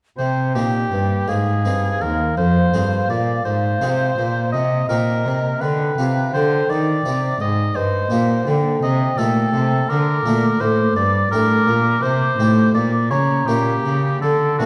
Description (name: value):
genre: classical, baroque-style sonata movement with continuo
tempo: 56 BPM (dotted quarters)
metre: 6/8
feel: rubato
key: C minor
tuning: A4 = 439 Hz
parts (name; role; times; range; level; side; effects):
- baroque flute; melody; 0.2-14.7 s; Eb5 to D6; -28 LUFS; equal; none
- warm oboe; second line; 0.2-14.7 s; F#4 to Eb5; -25 LUFS; equal; none
- harpsichord; accompaniment; 0.2-14.7 s; Eb2 to Ab4; -24 LUFS; equal; none
- rich cello; bass; 0.2-14.7 s; Eb2 to Eb3; -22 LUFS; equal; none
room: wet recital hall reverb, RT60 1.8 s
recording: dark, warm production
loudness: -18 LUFS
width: mono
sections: 0.2-14.7 A section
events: none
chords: 0.2 Cm; 1.3 Ab; 2.4 Fm; 4.5 Cm; 5.6 G7; 6.7 Cm; 8.8 Am7b5; 9.9 D; 11.0 Gm; 12.0 Cm; 13.1 C#dim7